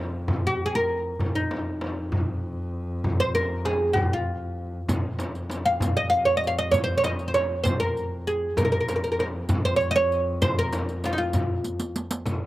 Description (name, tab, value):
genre	Persian modal ensemble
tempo	65 BPM (dotted quarters)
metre	6/8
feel	straight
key	F dastgah shur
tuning	A4 = 440 Hz
part	rich double bass	drone	0.0-12.3 s	F2	-31 LUFS	equal	none
part	frame drum	percussion	0.3-12.4 s	none	-33 LUFS	left 1 dB	none
part	tombak	percussion	0.3-12.4 s	none	-29 LUFS	equal	none
part	oud	melody	0.5-11.9 s	Eb4 to F5	-24 LUFS	right 1 dB	none
part	riq	percussion	4.9-12.4 s	none	-33 LUFS	right 2 dB	none
room	light reverb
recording	recorded outdoors, with no room sound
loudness	-23 LUFS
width	side -16 dB against mid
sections	0.0-12.3 A section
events	drum fill 11.6-12.3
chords	none